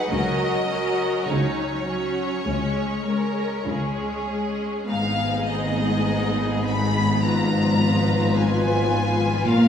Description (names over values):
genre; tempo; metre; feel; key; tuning
classical, slow romantic movement for string orchestra; 49-54 BPM; 4/4; rubato; unclear; A4 = 440 Hz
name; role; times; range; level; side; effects
bright symphonic violin section; melody; 0.0-9.7 s; C#5 to B5; -28 LUFS; left 2 dB; none
clear symphonic violin section; second line; 0.0-9.7 s; C#4 to Cb5; -28 LUFS; left 2 dB; none
clear symphonic viola section; accompaniment; 0.0-9.7 s; F3 to C#4; -26 LUFS; equal; none
rich symphonic cello section; bass; 0.1-9.7 s; G#2 to C#3; -25 LUFS; equal; none
rich symphonic double bass section; bass; 0.1-9.7 s; G#1 to C#2; -26 LUFS; left 1 dB; none
room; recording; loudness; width
wet recital hall reverb, RT60 1.5 s; heard from further back in the room, small room ambience; -20 LUFS; side -8 dB against mid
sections
0.0-9.7 A section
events
none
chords
0.1 F#/C#; 2.5 C#5; 4.9 G#m; 7.2 Fdim/Ab